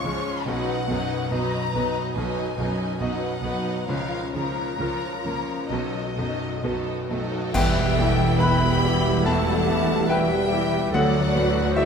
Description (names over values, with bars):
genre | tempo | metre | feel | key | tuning
cinematic, emotional film score for orchestra | 64-72 BPM | 4/4 | rubato | E minor from 7.5 s | A4 = 440 Hz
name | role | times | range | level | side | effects
rich studio violin section | melody | 0.0-11.9 s | C5 to Db6 | -32 LUFS | left 4 dB | none
rich studio violin section | second line | 0.0-11.9 s | Ab4 to B5 | -32 LUFS | left 1 dB | none
bright grand piano | accompaniment | 0.0-11.9 s | B1 to B5 | -29 LUFS | left 1 dB | none
rich studio viola section | accompaniment | 0.0-11.9 s | D3 to F#4 | -29 LUFS | right 2 dB | none
concert harp | arpeggios | 0.0-11.9 s | B2 to D#5 | -30 LUFS | left 8 dB | none
rich studio cello section | bass | 0.0-11.9 s | D2 to Db3 | -30 LUFS | right 3 dB | none
clear chamber double bass section | bass | 0.1-11.9 s | E1 to D2 | -29 LUFS | right 5 dB | none
cymbal swell, clash cymbals and concert bass drum | percussion | 3.9-9.2 s | none | -30 LUFS | right 1 dB | none
clear clarinet | second line | 7.5-11.9 s | G4 to C5 | -31 LUFS | left 1 dB | none
dark French horn section | sustained chords | 7.5-11.9 s | E3 to B3 | -28 LUFS | left 2 dB | none
room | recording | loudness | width
moderate scoring stage reverb, RT60 1.7 s | none | -21 LUFS | side -6 dB against mid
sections
0.0-7.5 A section; 7.5-11.9 A section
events
band accent 7.5-8.4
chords
0.5 B; 3.9 Bbm/Db; 5.7 B7; 7.5 Em; 10.9 D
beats
| 0.47 1.31 2.16 3.00 | 3.88 4.80 5.71 6.63 | 7.54 8.40 9.26 10.09 | 10.93 11.77